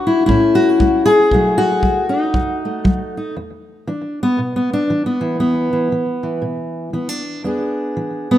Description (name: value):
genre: acoustic country blues, solo or duo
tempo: 117 BPM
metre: 4/4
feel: swing 60% on 8ths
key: E mixolydian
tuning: A4 = 441 Hz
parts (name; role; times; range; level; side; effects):
- fingerpicked steel-string acoustic guitar; melody; 0.0-8.4 s; E2 to G#4; -15 LUFS; left 1 dB; slapback echo
- kick drum; drums; 0.3-3.0 s; none; -20 LUFS; equal; none
room: light reverb, small room ambience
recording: rough home demo mix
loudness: -15 LUFS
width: side -12 dB against mid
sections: 0.0-3.4 A section; 3.4-8.4 B section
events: steel-string acoustic guitar solo 3.4-8.4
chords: 0.3 A; 1.3 B7; 3.4 E7(no3)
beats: 0.29 0.81 | 1.32 1.83 2.34 2.85 | 3.37 3.88 4.39 4.90 | 5.41 5.92 6.43 6.94 | 7.45 7.96